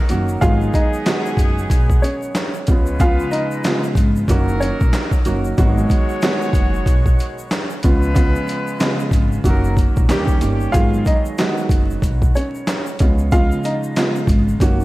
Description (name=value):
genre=hip hop, boom-bap hip-hop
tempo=93 BPM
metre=4/4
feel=swing 60% on 16ths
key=G# dorian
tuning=A4 = 441 Hz
part: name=warm upright piano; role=accompaniment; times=0.0-14.8 s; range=C#3 to G#4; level=-22 LUFS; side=right 2 dB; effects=cassette tape, high-pass filter, low-pass filter
part: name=bright trumpet section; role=stabs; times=0.0-10.4 s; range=F#3 to C#5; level=-28 LUFS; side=left 1 dB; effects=high-pass filter, low-pass filter, tape echo
part: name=upright bass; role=bass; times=0.1-14.8 s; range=F#1 to D#2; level=-20 LUFS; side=equal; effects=none
part: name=boom bap sampler-style drum kit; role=drums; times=0.1-14.8 s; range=handclaps, hi-hat, kick drum, snare drum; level=-17 LUFS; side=equal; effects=none
part: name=tube shaker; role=percussion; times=0.1-14.8 s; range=none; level=-44 LUFS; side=left 4 dB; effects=none
part: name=warm upright piano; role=melody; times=0.4-4.8, 10.7-14.1 s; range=C#4 to E#5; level=-24 LUFS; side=equal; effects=high-pass filter, low-pass filter, tape echo
room=light reverb, small room ambience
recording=vinyl crackle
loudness=-15 LUFS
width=side -18 dB against mid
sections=0.0-10.7 A section; 10.7-14.8 A section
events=none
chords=0.4 G#m7; 2.7 C#7; 4.3 F#6; 5.6 G#m7; 7.8 C#7; 9.4 F#6; 10.1 D#7; 10.7 G#m7; 13.0 C#7